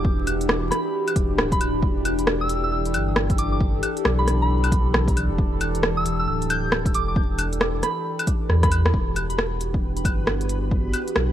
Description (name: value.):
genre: future garage.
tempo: 135 BPM.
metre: 4/4.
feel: swing 62% on 16ths.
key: E minor.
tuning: A4 = 442 Hz.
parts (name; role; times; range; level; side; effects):
warbly tape-like pad; sustained chords; 0.0-11.3 s; E3 to A4; -27 LUFS; equal; chorus, built-in reverb, phaser, sidechain pumping.
warm sub bass; bass; 0.0-11.3 s; D1 to E2; -24 LUFS; equal; sidechain pumping.
electronic kick drum; drums; 0.0-10.8 s; none; -23 LUFS; equal; none.
deep house drum kit; drums; 0.3-11.3 s; claves, hi-hat, rim click; -24 LUFS; equal; none.
soft synth bell; melody; 0.7-8.9 s; B5 to G6; -29 LUFS; right 1 dB; chorus, tape echo.
backwards swelling texture; texture; 9.6-11.3 s; B3 to B4; -35 LUFS; equal; built-in reverb.
room: light reverb.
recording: vinyl crackle, lossy compression artefacts.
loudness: -20 LUFS.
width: side -11 dB against mid.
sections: 0.0-8.9 A section; 8.9-11.3 B section.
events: drum fill 8.5-8.9; band accent 8.8.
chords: 0.0 Em9; 1.8 Dsus4/E; 8.9 Em9.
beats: | 0.05 0.49 0.94 1.38 | 1.83 2.27 2.72 3.16 | 3.61 4.05 4.50 4.94 | 5.38 5.83 6.27 6.72 | 7.16 7.61 8.05 8.49 | 8.94 9.38 9.83 10.27 | 10.72 11.16.